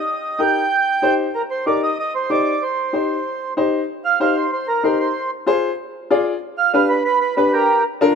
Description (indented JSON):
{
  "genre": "latin",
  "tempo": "189 BPM",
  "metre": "4/4",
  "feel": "straight",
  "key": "C minor",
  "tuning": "A4 = 440 Hz",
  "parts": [
    { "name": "mellow accordion", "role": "melody", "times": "0.0-7.8 s", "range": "G4 to G5", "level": "-18 LUFS", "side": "right 4 dB", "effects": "none" },
    { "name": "warm upright piano", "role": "accompaniment", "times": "0.4-8.2 s", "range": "D4 to D5", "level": "-19 LUFS", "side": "left 3 dB", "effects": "none" }
  ],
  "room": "moderate plate reverb, RT60 2.5 s",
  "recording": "minimal, uncompressed stereo recording",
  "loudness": "-16 LUFS",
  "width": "side -6 dB against mid",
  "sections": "0.0-3.9 A section; 3.9-8.2 B section",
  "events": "accordion solo 3.9-8.2",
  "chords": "0.0 Cm; 5.2 Fm; 6.4 G"
}